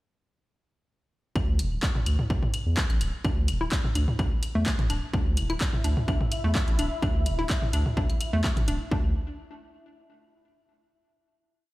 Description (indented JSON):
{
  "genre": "minimal techno",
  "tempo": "127 BPM",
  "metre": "4/4",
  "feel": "swing 53% on 16ths",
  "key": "unclear",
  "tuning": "A4 = 440 Hz",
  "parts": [
    { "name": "saturated sub bass", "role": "bass", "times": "1.4-9.1 s", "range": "D1 to E2", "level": "-27 LUFS", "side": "equal", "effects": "sidechain pumping" },
    { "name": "electronic kick drum", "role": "drums", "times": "1.4-9.0 s", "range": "none", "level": "-27 LUFS", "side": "equal", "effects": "overdrive" },
    { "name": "electronic claves and toms", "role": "percussion", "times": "1.4-8.8 s", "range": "none", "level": "-33 LUFS", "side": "equal", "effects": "overdrive, dub echo" },
    { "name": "punchy analog drum machine", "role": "drums", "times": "1.6-8.8 s", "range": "handclaps, hi-hat", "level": "-35 LUFS", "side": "equal", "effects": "overdrive" },
    { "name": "hollow square pluck", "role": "riff", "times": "3.2-9.1 s", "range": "A3 to E4", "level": "-33 LUFS", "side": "equal", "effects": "chorus, sidechain pumping, digital delay" },
    { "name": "bubbling stepped-filter texture", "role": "texture", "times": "5.1-8.9 s", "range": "E4 to E5", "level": "-38 LUFS", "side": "left 1 dB", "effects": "chorus, built-in reverb, sidechain pumping" }
  ],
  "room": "little or no reverb",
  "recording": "played on a big sound system in a bare room, stone room reverb",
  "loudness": "-24 LUFS",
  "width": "side -18 dB against mid",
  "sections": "1.4-8.9 groove; 8.9-10.8 final note",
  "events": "none",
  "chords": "1.4 D5; 8.9 N.C.",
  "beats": "| 1.35 1.83 2.30 2.77 | 3.25 3.72 4.19 4.66 | 5.13 5.61 6.08 6.55 | 7.03 7.50 7.97 8.44 | 8.91"
}